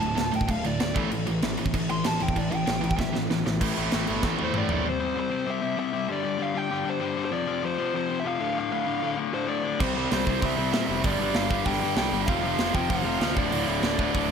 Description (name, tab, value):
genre	punk rock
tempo	193 BPM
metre	4/4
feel	straight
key	D minor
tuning	A4 = 437 Hz
part	dark smooth lead guitar	melody	0.0-14.3 s	C5 to C6	-30 LUFS	right 1 dB	overdrive, tape echo
part	overdriven electric guitar	riff	0.0-14.3 s	D2 to C4	-28 LUFS	left 9 dB	none
part	tight distorted guitar	riff	0.0-4.8, 9.8-14.3 s	D2 to C4	-30 LUFS	right 12 dB	distortion, slapback echo
part	fuzz picked electric bass	bass	0.0-4.8, 9.8-14.3 s	D1 to Bb2	-32 LUFS	right 1 dB	overdrive
part	tight metal drum kit	drums	0.0-4.8, 9.8-14.2 s	crash cymbal, hi-hat, kick drum, snare drum, toms	-29 LUFS	right 1 dB	none
room	moderate lush hall reverb, RT60 2.1 s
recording	big arena sound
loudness	-24 LUFS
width	side -6 dB against mid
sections	0.0-3.6 A section; 3.6-4.8 B section; 4.8-14.3 C section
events	lead electric guitar solo 0.0-3.6; drum fill 3.0-3.6, 4.2-4.8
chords	0.0 D5; 0.9 A5; 4.8 C; 6.1 G5; 7.3 F5; 8.4 Dm; 9.8 C; 11.0 G5; 12.3 F5; 13.4 D5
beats	0.17 0.48 0.79 | 1.10 1.42 1.73 2.04 | 2.35 2.67 2.98 3.29 | 3.60 3.91 4.22 4.54 | 4.85 5.16 5.47 5.78 | 6.09 6.40 6.71 7.02 | 7.33 7.64 7.95 8.26 | 8.57 8.88 9.19 9.49 | 9.80 10.11 10.42 10.73 | 11.04 11.35 11.66 11.97 | 12.28 12.59 12.90 13.21 | 13.53 13.84 14.15